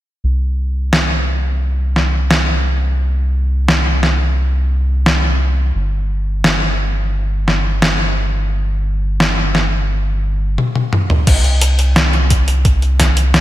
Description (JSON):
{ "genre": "synthwave", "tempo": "87 BPM", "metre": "4/4", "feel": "straight", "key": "unclear", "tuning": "A4 = 440 Hz", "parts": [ { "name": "round analog bass", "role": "bass", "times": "0.2-13.4 s", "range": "G1 to C2", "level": "-15 LUFS", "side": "equal", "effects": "tube saturation" }, { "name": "detuned 8-bit digital drum machine", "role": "drums", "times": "0.9-13.4 s", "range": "crash cymbal, hi-hat, snare drum, toms", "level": "-16 LUFS", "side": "equal", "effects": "overdrive" }, { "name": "electronic kick drum", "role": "drums", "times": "11.3-13.1 s", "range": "none", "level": "-14 LUFS", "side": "equal", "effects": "overdrive" } ], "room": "light reverb", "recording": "bright 1980s-style digital production", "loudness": "-13 LUFS", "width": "side -14 dB against mid", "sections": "0.2-11.3 A section; 11.3-13.4 B section", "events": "filter sweep on analog synth bass 0.2-11.3; drum fill 10.6-11.3", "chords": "none", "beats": "| 0.24 0.93 1.62 2.31 | 3.00 3.69 4.38 5.07 | 5.75 6.45 7.13 7.82 | 8.51 9.20 9.89 10.58 | 11.27 11.96 12.65 13.34" }